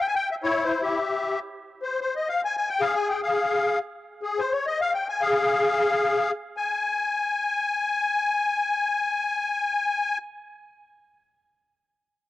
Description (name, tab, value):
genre	musette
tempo	125-152 BPM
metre	3/4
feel	swing 55% on 8ths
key	unclear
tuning	A4 = 440 Hz
part	musette accordion	solo	0.0-10.2 s	E4 to Ab5	-23 LUFS	left 2 dB	cassette tape
room	moderate spring reverb, RT60 2.5 s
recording	home recording on cassette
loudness	-22 LUFS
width	side -14 dB against mid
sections	0.0-6.6 A section; 6.6-9.4 B section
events	slowing down 4.0-6.6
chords	0.0 Em6; 1.6 N.C.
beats	| 0.39 0.79 1.19 | 1.59 2.00 2.40 | 2.80 3.20 3.60 | 3.99 4.39 4.79 | 5.21 5.64 6.09 | 6.56 7.04 7.52 | 7.99 8.46 8.94